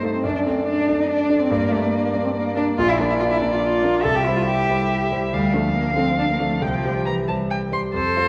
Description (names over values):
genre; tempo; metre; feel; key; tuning
quick classical-period movement for piano trio; 141 BPM; 3/4; straight; unclear; A4 = 441 Hz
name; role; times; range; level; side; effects
rich violin; melody; 0.0-8.3 s; C5 to C6; -27 LUFS; equal; none
warm cello; second line; 0.0-8.3 s; E3 to A4; -24 LUFS; equal; none
clear grand piano; accompaniment; 0.0-8.3 s; Bb1 to D5; -25 LUFS; equal; none
room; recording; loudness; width
wet concert hall reverb, RT60 1.9 s; worn, warbling old tape, cassette tape, warbly pitch drift; -21 LUFS; mono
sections
0.0-7.9 A section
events
none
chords
0.2 D/F#; 1.5 Gm; 2.8 Bb; 4.0 C; 5.3 Dm; 6.6 C